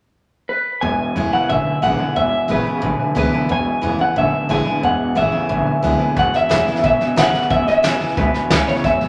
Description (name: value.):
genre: rockabilly.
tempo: 180 BPM.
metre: 4/4.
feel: straight.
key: E major.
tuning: A4 = 440 Hz.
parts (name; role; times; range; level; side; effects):
electric guitar through a small old amp; melody; 0.5-9.1 s; B4 to G#5; -21 LUFS; equal; spring reverb.
picked steel-string acoustic guitar; accompaniment; 0.8-9.1 s; E2 to E4; -27 LUFS; equal; none.
warm upright piano; accompaniment; 0.8-9.1 s; B4 to G#5; -27 LUFS; equal; none.
electric guitar through a small old amp; riff; 0.8-9.1 s; E2 to D3; -25 LUFS; equal; tremolo.
upright bass; bass; 0.8-9.0 s; E1 to C#2; -28 LUFS; equal; none.
soft brush drum kit; drums; 6.2-9.1 s; hi-hat, kick drum, snare drum; -23 LUFS; equal; none.
room: moderate large studio reverb, RT60 1.1 s.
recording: none.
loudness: -18 LUFS.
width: mono.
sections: 0.8-6.2 A section; 6.2-9.1 B section.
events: none.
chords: 0.0 N.C.; 0.8 E.